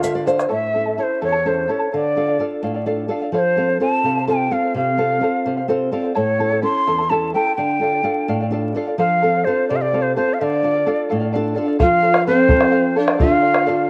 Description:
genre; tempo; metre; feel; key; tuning
andean folk, Andean ensemble; 85 BPM (dotted quarters); 6/8; straight; D minor; A4 = 440 Hz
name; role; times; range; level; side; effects
quena; melody; 0.0-13.9 s; C5 to C6; -21 LUFS; equal; none
pan flute; second line; 0.0-0.2, 11.8-13.9 s; C4 to F4; -23 LUFS; equal; none
charango; accompaniment; 0.0-13.9 s; E4 to A5; -27 LUFS; equal; none
nylon-string guitar; accompaniment; 0.0-13.9 s; E2 to F5; -24 LUFS; equal; none
bombo; percussion; 0.0-0.5, 11.8-13.7 s; none; -23 LUFS; equal; none
tube shaker; percussion; 0.0-0.5 s; none; -41 LUFS; equal; none
room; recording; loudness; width
moderate spring reverb, RT60 1.9 s, small room ambience; worn, warbling old tape, cassette tape, vinyl crackle, warbly pitch drift; -18 LUFS; mono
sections
0.5-11.8 A section; 11.8-13.9 B section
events
nylon-string guitar fill 0.0-0.5, 5.5-6.2, 11.1-11.8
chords
0.0 Dm; 0.5 A; 1.9 Dm; 3.3 F; 6.2 A; 7.6 Dm; 9.0 F; 10.4 Dm; 11.8 F; 13.2 Dm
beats
| 0.50 1.21 | 1.92 2.63 | 3.33 4.04 | 4.75 5.46 | 6.16 6.87 | 7.58 8.28 | 8.99 9.69 | 10.39 11.10 | 11.80 12.50 | 13.20

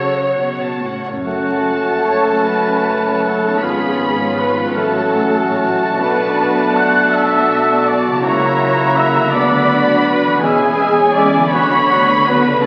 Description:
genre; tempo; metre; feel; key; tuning
classical, slow romantic movement for symphony orchestra; 46-55 BPM (dotted quarters); 6/8; rubato; F# minor; A4 = 439 Hz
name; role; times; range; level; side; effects
warm symphonic violin section; melody; 0.0-12.7 s; C#5 to B5; -22 LUFS; equal; none
warm symphonic violin section; second line; 0.0-12.6 s; B3 to A5; -26 LUFS; equal; none
dark bassoon; accompaniment; 0.0-12.4 s; F#3 to B3; -25 LUFS; equal; none
rich symphonic viola section; accompaniment; 0.0-12.6 s; F#4 to F#5; -22 LUFS; equal; none
concert harp; arpeggios; 0.0-12.7 s; F#2 to A4; -30 LUFS; equal; none
rich symphonic cello section; bass; 0.0-12.6 s; E2 to D3; -27 LUFS; equal; none
warm clarinet; second line; 1.2-12.4 s; B3 to E4; -28 LUFS; equal; none
clear oboe; second line; 1.3-12.7 s; E5 to F#5; -27 LUFS; equal; none
concert flute; second line; 1.3-12.6 s; F#5 to F#6; -23 LUFS; equal; none
dark French horn section; sustained chords; 1.3-12.4 s; E#3 to D4; -24 LUFS; equal; none
rich symphonic double bass section; bass; 1.3-12.7 s; E1 to D2; -30 LUFS; equal; none
room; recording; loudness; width
wet scoring stage reverb, RT60 2.0 s; very old 78 rpm record, vinyl crackle; -15 LUFS; mono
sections
0.0-1.3 A section; 1.3-12.7 A section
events
none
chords
0.0 F#m; 3.6 C#7/G#; 4.8 F#m/A; 6.0 Bm7; 8.2 F#7/C#; 9.3 Bm/D; 10.4 C#m/E; 11.5 Bm/D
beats
| 1.26 2.43 | 3.62 4.76 | 6.00 7.14 | 8.24 9.34 | 10.43 11.53 | 12.65

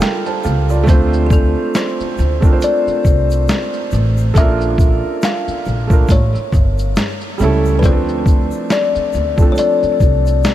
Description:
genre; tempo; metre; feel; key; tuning
lo-fi hip hop; 69 BPM; 4/4; swing 58% on 16ths; D minor; A4 = 439 Hz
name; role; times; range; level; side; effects
felt-muted upright piano; accompaniment; 0.0-10.5 s; F3 to A5; -20 LUFS; right 4 dB; cassette tape
boom bap sampler-style drum kit; drums; 0.0-10.5 s; hi-hat, kick drum, shaker, snare drum; -15 LUFS; equal; none
tube shaker; percussion; 0.0-10.5 s; none; -43 LUFS; left 9 dB; none
upright bass; bass; 0.5-10.4 s; G1 to D2; -17 LUFS; equal; none
kalimba; melody; 1.3-10.4 s; G#4 to F5; -20 LUFS; left 5 dB; analog delay
room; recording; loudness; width
light reverb, small room reverb; cassette tape; -12 LUFS; side -13 dB against mid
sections
0.0-7.8 A section; 7.8-10.5 B section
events
none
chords
0.0 Gm9; 0.9 Dm7; 4.3 Bbmaj7; 6.1 A7; 7.8 Dm7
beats
0.00 | 0.87 1.74 2.61 3.48 | 4.35 5.22 6.09 6.96 | 7.83 8.70 9.57 10.44

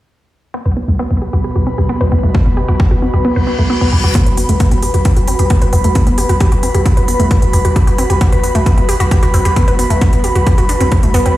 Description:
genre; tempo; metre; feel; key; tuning
driving peak-time techno; 133 BPM; 4/4; straight; unclear; A4 = 440 Hz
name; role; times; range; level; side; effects
wide unison pluck; riff; 0.5-11.3 s; A3 to B4; -19 LUFS; equal; tube saturation, sidechain pumping, dub echo
deep dark ambient pad; drone; 1.1-4.2 s; B2 to B3; -23 LUFS; equal; chorus, built-in reverb, sidechain pumping
airy breathy pad; texture; 0.5-11.4 s; F#4 to B5; -20 LUFS; equal; chorus, sidechain pumping
growling 808-style bass; bass; 0.7-11.4 s; B1; -15 LUFS; equal; tube saturation, sidechain pumping, low-pass filter
electronic kick drum; drums; 2.3-11.0 s; none; -13 LUFS; equal; overdrive, studio reverb
reverse cymbal; sound effects; 3.4-4.2 s; none; -24 LUFS; left 3 dB; none
electronic hi-hat; drums; 4.2-11.3 s; none; -25 LUFS; equal; overdrive, sidechain pumping on hats, studio reverb
room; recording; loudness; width
digital ambience; played on a big sound system in a bare room, stone room reverb; -10 LUFS; side -15 dB against mid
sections
0.5-4.2 A section; 4.2-11.4 B section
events
fade-in on analog synth pad 0.5-4.2; filter sweep on synth arpeggio sound 0.5-4.2; kick drops out 3.2-4.2; reverse cymbal 3.4-4.2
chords
0.5 B5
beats
| 0.54 0.99 1.44 1.90 | 2.35 2.80 3.25 3.70 | 4.15 4.60 5.05 5.50 | 5.96 6.41 6.86 7.31 | 7.76 8.21 8.66 9.11 | 9.56 10.02 10.47 10.92 | 11.37

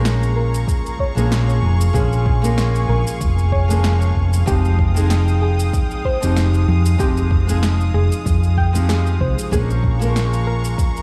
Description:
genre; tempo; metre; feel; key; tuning
sunset chillout; 95 BPM; 4/4; swing 55% on 16ths; Bb dorian; A4 = 440 Hz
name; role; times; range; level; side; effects
nylon-string guitar; accompaniment; 0.0-11.0 s; F3 to Bb4; -27 LUFS; equal; delay
dark studio string section; sustained chords; 0.0-11.0 s; Ab3 to Eb6; -31 LUFS; equal; none
hollow-body short-scale fingered electric bass; bass; 0.0-10.7 s; F1 to F2; -19 LUFS; equal; none
electronic snare drum and shaker; drums; 0.1-11.0 s; none; -29 LUFS; equal; overdrive
soft round pluck; arpeggios; 0.4-10.8 s; G4 to G5; -30 LUFS; equal; chorus, delay
electronic kick drum; drums; 0.7-10.9 s; none; -22 LUFS; equal; none
room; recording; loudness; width
light reverb, digital ambience; played on a big sound system in a bare room, stone room reverb; -17 LUFS; mono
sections
0.0-11.0 A section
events
none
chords
0.0 Bbm7; 4.5 Fm9; 9.5 Bbm7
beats
0.05 0.68 1.31 | 1.94 2.58 3.21 3.84 | 4.47 5.10 5.73 6.37 | 7.00 7.63 8.26 8.89 | 9.52 10.15 10.79

